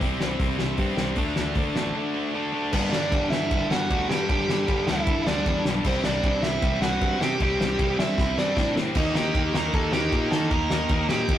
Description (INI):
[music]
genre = punk rock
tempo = 154 BPM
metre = 4/4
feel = straight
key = unclear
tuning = A4 = 440 Hz
[part]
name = biting overdriven guitar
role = riff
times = 0.0-2.7, 9.0-11.4 s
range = C3 to Eb4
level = -33 LUFS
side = right 5 dB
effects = none
[part]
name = cranked stack guitar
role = riff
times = 0.0-11.4 s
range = G2 to Eb4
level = -28 LUFS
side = left 4 dB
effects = overdrive
[part]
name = scooped high-gain guitar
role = riff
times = 0.0-11.4 s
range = G2 to Eb4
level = -33 LUFS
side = right 3 dB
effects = distortion
[part]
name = growling picked electric bass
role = bass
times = 0.0-11.4 s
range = G1 to Eb3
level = -30 LUFS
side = equal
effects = overdrive
[part]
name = loose indie drum kit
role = drums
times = 0.0-11.4 s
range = crash cymbal, hi-hat, kick drum, ride cymbal, snare drum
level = -26 LUFS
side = equal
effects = none
[part]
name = biting lead guitar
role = melody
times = 2.7-11.4 s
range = B3 to Bb5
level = -27 LUFS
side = right 2 dB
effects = overdrive
[sound]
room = moderate studio reverb, RT60 0.6 s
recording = rough rehearsal-room recording, tube saturation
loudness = -22 LUFS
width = side -11 dB against mid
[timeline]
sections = 0.0-2.7 A section; 2.7-11.4 B section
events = break 2.0-2.7; drum fill 8.2-9.0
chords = 0.0 C5; 1.2 D5; 2.7 G5; 5.8 C; 9.0 Eb